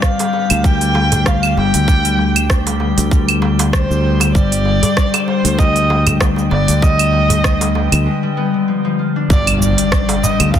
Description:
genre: organic downtempo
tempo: 97 BPM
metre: 4/4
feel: swing 55% on 16ths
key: G phrygian dominant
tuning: A4 = 441 Hz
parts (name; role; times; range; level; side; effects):
- dark kamancheh; melody; 0.0-10.6 s; C5 to G5; -20 LUFS; right 1 dB; tape echo
- concert harp; arpeggios; 0.0-10.6 s; D3 to G4; -18 LUFS; left 5 dB; tape echo
- electronic kick drum; drums; 0.0-10.6 s; none; -14 LUFS; right 1 dB; overdrive
- organic electronic drum kit; drums; 0.0-10.6 s; claves, hi-hat, rim click, shaker; -19 LUFS; right 3 dB; overdrive
- drifting glass-harmonics texture; texture; 0.0-10.6 s; G4 to G5; -29 LUFS; right 4 dB; chorus, built-in reverb
- darbuka; percussion; 0.2-10.5 s; none; -24 LUFS; right 2 dB; none
- sustaining fretless electric bass; bass; 0.5-10.6 s; G1 to D2; -17 LUFS; equal; none
- impact; sound effects; 9.3-10.6 s; none; -21 LUFS; right 1 dB; none
room: light reverb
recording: dense, heavily limited modern master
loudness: -12 LUFS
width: side -10 dB against mid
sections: 0.0-9.3 A section; 9.3-10.6 B section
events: break 8.1-9.3; impact 9.3-10.6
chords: 0.0 G7; 4.4 Ab5/G; 9.3 G7

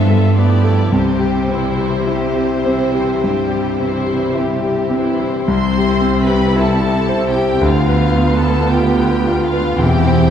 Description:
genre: classical, romantic movement for piano and orchestra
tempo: 52-57 BPM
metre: 4/4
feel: rubato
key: C major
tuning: A4 = 440 Hz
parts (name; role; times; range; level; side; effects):
- clear concert grand piano; melody; 0.0-10.3 s; C2 to C5; -16 LUFS; left 1 dB; none
- rich chamber violin section; melody; 0.0-10.3 s; C5 to C6; -25 LUFS; left 1 dB; none
- rich studio violin section; second line; 0.0-10.3 s; E4 to C5; -25 LUFS; left 3 dB; none
- rich studio viola section; accompaniment; 0.0-10.3 s; E3 to F4; -24 LUFS; right 2 dB; none
- warm studio cello section; bass; 0.0-10.3 s; C2 to C3; -19 LUFS; right 2 dB; none
- dark studio double bass section; bass; 5.5-10.3 s; E1 to D2; -22 LUFS; right 1 dB; none
- timpani; percussion; 9.8-10.3 s; E2; -20 LUFS; left 1 dB; none
room: wet scoring stage reverb, RT60 2.0 s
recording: heard from further back in the room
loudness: -13 LUFS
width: side -9 dB against mid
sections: 0.0-5.5 A section; 5.5-10.3 B section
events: none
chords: 0.0 G13; 0.9 C; 7.7 Bdim/D; 9.8 C/E

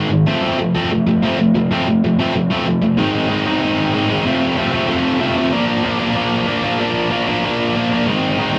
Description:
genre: punk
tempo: 189 BPM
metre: 4/4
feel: straight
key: unclear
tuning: A4 = 440 Hz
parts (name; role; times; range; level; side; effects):
- sludgy distorted guitar; solo; 0.0-8.6 s; F2 to Eb4; -17 LUFS; equal; overdrive, analog delay
room: wet small room reverb, RT60 0.5 s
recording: rough rehearsal-room recording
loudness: -17 LUFS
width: mono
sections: 0.0-3.0 A section; 3.0-8.6 B section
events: none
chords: 0.3 F; 3.0 Ab; 4.3 F; 5.5 Bb; 8.1 Ab

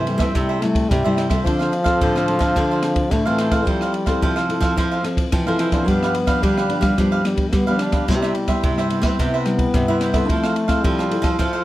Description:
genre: samba and choro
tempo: 109 BPM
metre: 4/4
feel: straight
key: C major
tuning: A4 = 440 Hz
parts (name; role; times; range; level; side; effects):
- mellow trombone; second line; 0.0-11.6 s; E3 to D4; -23 LUFS; left 2 dB; none
- cavaquinho; accompaniment; 0.0-11.6 s; D4 to F5; -24 LUFS; right 4 dB; none
- nylon-string guitar; accompaniment; 0.0-11.6 s; G2 to A4; -24 LUFS; left 2 dB; none
- nylon-string guitar; bass; 0.0-11.6 s; C3 to C4; -24 LUFS; equal; none
- compact cocktail drum kit; drums; 0.1-11.5 s; kick drum, ride cymbal, rim click; -23 LUFS; equal; none
room: moderate studio reverb, RT60 0.8 s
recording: none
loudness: -17 LUFS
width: side -15 dB against mid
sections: 0.0-11.6 A section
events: none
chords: 0.0 C6; 1.5 Dm7; 3.7 Fmaj7; 5.9 G7; 8.1 Cmaj7; 10.3 Fmaj7

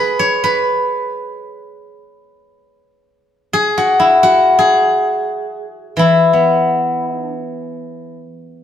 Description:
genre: chinese traditional, Chinese solo plucked strings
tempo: 71-89 BPM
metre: 4/4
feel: rubato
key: E gong mode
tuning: A4 = 441 Hz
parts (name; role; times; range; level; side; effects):
- steel-string zither; solo; 0.0-8.6 s; E3 to C#5; -13 LUFS; left 1 dB; none
room: wet stone room reverb, RT60 1.2 s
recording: band playing live in one room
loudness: -12 LUFS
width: side -9 dB against mid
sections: 0.0-8.6 A section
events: none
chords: none

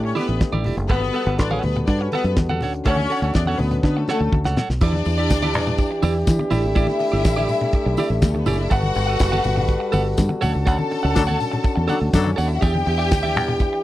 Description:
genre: disco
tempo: 123 BPM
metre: 4/4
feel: straight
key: E dorian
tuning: A4 = 444 Hz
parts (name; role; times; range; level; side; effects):
- clear studio string section; second line; 0.0-13.8 s; G3 to A5; -26 LUFS; left 2 dB; none
- clean electric guitar; accompaniment; 0.0-13.8 s; E4 to F#5; -26 LUFS; right 5 dB; none
- mellow French horn section; sustained chords; 0.0-13.8 s; D3 to B4; -26 LUFS; left 1 dB; none
- fingered electric bass; bass; 0.0-13.7 s; F1 to E3; -22 LUFS; equal; none
- damped 70s drum kit; drums; 0.2-13.7 s; crash cymbal, hi-hat, kick drum, snare drum; -20 LUFS; equal; none
- congas; percussion; 0.2-13.7 s; none; -28 LUFS; left 2 dB; none
- tambourine; percussion; 4.8-13.7 s; none; -40 LUFS; left 9 dB; none
- warm horn section; stabs; 11.2-12.3 s; F#3 to A4; -22 LUFS; left 5 dB; none
room: little or no reverb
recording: dry, close 1970s-style studio recording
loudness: -18 LUFS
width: side -15 dB against mid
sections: 0.0-4.8 A section; 4.8-13.8 B section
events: drum fill 3.8-4.8; band accent 10.7-12.6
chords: 0.0 A7sus4; 0.9 Gmaj9; 2.6 Dmaj7; 4.8 Em7; 6.5 A7sus4; 8.7 Gmaj9; 10.4 Dmaj7; 12.6 Em7

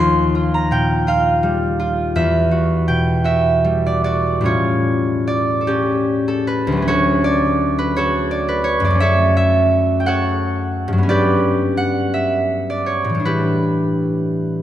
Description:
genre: classical, solo harp piece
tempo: 49-60 BPM (dotted quarters)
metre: 6/8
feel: rubato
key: D major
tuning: A4 = 439 Hz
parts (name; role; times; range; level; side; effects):
- concert harp; solo; 0.0-14.6 s; D2 to C6; -15 LUFS; equal; none
room: wet concert hall reverb, RT60 2.3 s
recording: none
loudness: -15 LUFS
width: side -11 dB against mid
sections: 0.0-6.9 A section; 6.9-14.6 B section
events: none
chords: 0.0 Ebadd9; 2.2 Emadd9; 4.5 Aaug7; 6.9 Dmaj7; 9.0 F#m7; 11.1 Gmaj7#11; 13.3 A9sus4

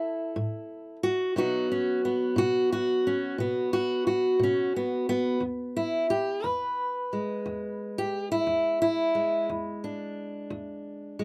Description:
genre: acoustic country blues, solo or duo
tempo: 59 BPM (dotted quarters)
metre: 12/8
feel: straight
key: E mixolydian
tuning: A4 = 440 Hz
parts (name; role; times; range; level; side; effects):
- fingerpicked steel-string acoustic guitar; solo; 0.0-11.2 s; E2 to B4; -28 LUFS; equal; none
room: moderate booth ambience, RT60 0.2 s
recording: none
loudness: -28 LUFS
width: mono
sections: 0.0-5.4 A section; 5.4-11.2 B section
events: steel-string acoustic guitar solo 5.4-11.2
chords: 0.0 A5; 1.4 B5; 5.4 E7

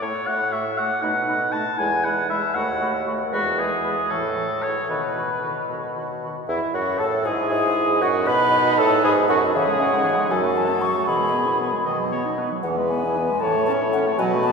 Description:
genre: quick classical-period movement for wind quintet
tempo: 78 BPM (dotted quarters)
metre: 6/8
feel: straight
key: E major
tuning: A4 = 440 Hz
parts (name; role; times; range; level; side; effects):
- mellow hollow silver concert flute; melody; 0.0-14.5 s; E5 to C#6; -26 LUFS; left 3 dB; none
- warm oboe; second line; 0.0-14.5 s; E4 to A5; -25 LUFS; left 1 dB; none
- clear French horn; accompaniment; 0.0-14.5 s; D#3 to B4; -28 LUFS; left 1 dB; none
- clear clarinet; accompaniment; 0.0-14.5 s; D#3 to B4; -27 LUFS; right 4 dB; none
- warm bassoon; bass; 0.0-14.5 s; D#2 to C#3; -25 LUFS; right 1 dB; none
room: wet cathedral reverb, RT60 5.6 s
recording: heard from further back in the room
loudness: -19 LUFS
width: side -5 dB against mid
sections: 0.0-6.5 A section; 6.5-14.5 B section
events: none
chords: 0.3 F#m/A; 1.0 B7; 1.8 E; 2.6 B7/D# (rootless); 3.3 E; 4.1 A; 4.9 B; 6.5 E; 8.0 B7/F#; 9.5 C#m; 10.3 F#m; 11.1 E/B; 11.9 B; 12.6 E; 13.4 A

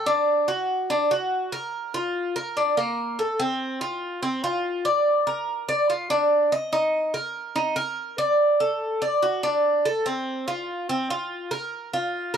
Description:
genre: latin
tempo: 144 BPM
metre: 4/4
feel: straight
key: unclear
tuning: A4 = 442 Hz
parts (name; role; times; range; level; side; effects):
- Cuban tres; solo; 0.0-12.4 s; Bb3 to Eb5; -22 LUFS; equal; none
room: small room ambience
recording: dry, close 1970s-style studio recording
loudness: -22 LUFS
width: side -8 dB against mid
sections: 0.0-12.4 A section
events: none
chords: none

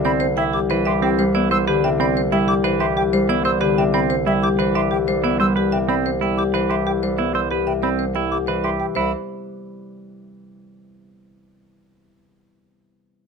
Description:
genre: classical, minimalist pattern music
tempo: 185 BPM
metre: 6/4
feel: straight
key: C major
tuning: A4 = 440 Hz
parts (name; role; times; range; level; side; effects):
- marimba with medium hard mallets; melody; 0.0-9.1 s; G4 to G5; -22 LUFS; left 6 dB; none
- Celtic harp; accompaniment; 0.0-10.9 s; C3 to B3; -23 LUFS; right 1 dB; none
- clear bass clarinet; bass; 0.0-9.1 s; C2; -26 LUFS; left 1 dB; none
- concert flute; arpeggios; 0.1-9.1 s; E5 to E6; -25 LUFS; left 1 dB; none
- semi-hollow electric guitar; arpeggios; 0.1-9.1 s; C4 to C5; -23 LUFS; right 13 dB; none
room: light reverb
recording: close, detailed microphones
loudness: -17 LUFS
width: side -5 dB against mid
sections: 0.0-9.0 A section; 9.0-10.9 B section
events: none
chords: 0.0 Cmaj7; 9.0 Cmaj7 (rootless)

